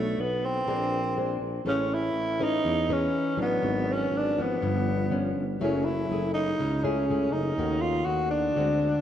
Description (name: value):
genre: bossa nova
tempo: 122 BPM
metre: 4/4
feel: straight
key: unclear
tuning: A4 = 441 Hz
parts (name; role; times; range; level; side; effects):
- growling tenor saxophone; melody; 0.0-9.0 s; A3 to F#4; -27 LUFS; equal; none
- nylon-string guitar; accompaniment; 0.0-9.0 s; G2 to C#5; -31 LUFS; left 3 dB; none
- mellow tuba; bass; 0.0-9.0 s; F#1 to E2; -31 LUFS; equal; none
room: wet plate reverb, RT60 3.6 s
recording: heard from further back in the room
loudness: -24 LUFS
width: side -10 dB against mid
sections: 0.0-9.0 A section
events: none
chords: 0.0 Bm9; 0.7 A#9; 1.7 Amaj9; 3.6 G#m7b5; 4.6 G7#11; 5.6 F#m9; 7.6 D#m7b5